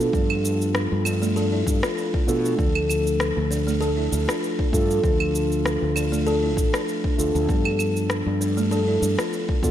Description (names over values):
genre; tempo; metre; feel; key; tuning
organic downtempo; 98 BPM; 4/4; swing 54% on 16ths; D dorian; A4 = 440 Hz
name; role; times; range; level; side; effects
muted felt-like synth keys; accompaniment; 0.0-9.7 s; F3 to A4; -25 LUFS; right 1 dB; chorus, sidechain pumping, analog delay
fretless electric bass; bass; 0.0-9.7 s; A1 to B2; -24 LUFS; left 1 dB; wide subtle chorus, sidechain pumping
electronic cabasa, claves and rim click; drums; 0.0-9.7 s; none; -29 LUFS; equal; overdrive
buzzing kalimba; arpeggios; 0.1-9.6 s; A3 to A4; -27 LUFS; equal; analog delay
electronic kick drum; drums; 0.1-9.7 s; none; -23 LUFS; equal; none
room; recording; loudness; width
moderate lush hall reverb, RT60 1.8 s, digital ambience; dreamy mix soaked in reverb; -20 LUFS; side -11 dB against mid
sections
0.0-9.7 A section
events
none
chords
0.0 G7; 2.6 Dm; 7.5 G7